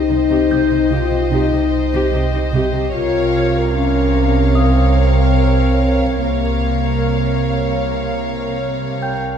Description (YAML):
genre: cinematic, suspense film score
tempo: 74 BPM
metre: 4/4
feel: straight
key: unclear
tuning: A4 = 440 Hz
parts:
  - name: rich studio violin section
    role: melody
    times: 0.0-9.2 s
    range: Eb5 to F5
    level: -27 LUFS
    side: left 3 dB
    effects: none
  - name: warm chamber violin section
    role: second line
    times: 0.0-9.2 s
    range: C5 to Db5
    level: -26 LUFS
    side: left 1 dB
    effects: none
  - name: glass harmonica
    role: sustained chords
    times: 0.0-9.4 s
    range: C5 to Bb5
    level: -29 LUFS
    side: left 1 dB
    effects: none
  - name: mellow French horn section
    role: sustained chords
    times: 0.0-8.6 s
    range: Bb3 to F4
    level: -19 LUFS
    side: left 4 dB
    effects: none
  - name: sub bass with octave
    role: drone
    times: 0.0-9.4 s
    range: C2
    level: -22 LUFS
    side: right 1 dB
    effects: none
  - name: warm chamber viola section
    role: accompaniment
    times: 0.1-9.2 s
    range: Eb4 to Bb4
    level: -25 LUFS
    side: right 3 dB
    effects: none
  - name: clear chamber double bass section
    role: bass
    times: 0.1-9.2 s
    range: C2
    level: -21 LUFS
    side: right 2 dB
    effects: none
  - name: dark chamber cello section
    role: bass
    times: 0.1-9.2 s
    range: C3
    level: -22 LUFS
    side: right 2 dB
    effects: none
  - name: music box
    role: texture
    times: 0.5-9.4 s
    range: Eb5 to G6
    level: -28 LUFS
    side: right 1 dB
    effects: none
room: moderate scoring stage reverb, RT60 1.9 s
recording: heard from further back in the room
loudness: -14 LUFS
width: side -8 dB against mid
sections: 0.0-9.4 A section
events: none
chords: 0.0 Cm; 2.9 Bbm/C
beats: 0.51 1.32 2.13 | 2.94 3.75 4.56 5.37 | 6.18 6.99 7.80 8.62